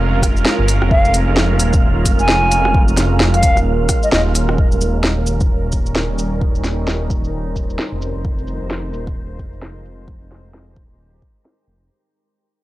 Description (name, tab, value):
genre	future garage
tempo	131 BPM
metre	4/4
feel	swing 60% on 16ths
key	Bb dorian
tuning	A4 = 440 Hz
part	deep dark ambient pad	sustained chords	0.0-11.9 s	G3 to C5	-24 LUFS	right 3 dB	chorus, built-in reverb, sidechain pumping
part	dark detuned saw bass	bass	0.0-11.9 s	Eb1 to G1	-18 LUFS	equal	sidechain pumping
part	wind-like tuned noise texture	texture	0.0-11.9 s	Bb4 to F5	-30 LUFS	right 4 dB	built-in reverb
part	electronic kick drum	drums	0.2-11.3 s	none	-17 LUFS	equal	none
part	organic electronic drum kit	drums	0.2-11.8 s	hi-hat, rim click, shaker, snare drum	-19 LUFS	equal	low-pass filter on perc, low-pass filter on hats, low-pass filter on snare
part	hollow concert flute	melody	0.9-4.2 s	Eb5 to Ab5	-20 LUFS	equal	analog delay
room	little or no reverb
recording	dry, gritty hardware recording, transformer saturation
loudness	-14 LUFS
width	side -16 dB against mid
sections	0.0-4.6 A section; 4.6-11.9 B section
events	band accent 4.1; fade-out 4.6-11.9; filter sweep on drum 4.6-11.9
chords	0.0 Bbm7/F; 4.6 Eb7; 8.2 Fm7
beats	0.00 0.46 | 0.92 1.38 1.83 2.29 | 2.75 3.21 3.67 4.12 | 4.58 5.04 5.50 5.96 | 6.41 6.87 7.33 7.79 | 8.24 8.70 9.16 9.62 | 10.08 10.54 10.99 11.45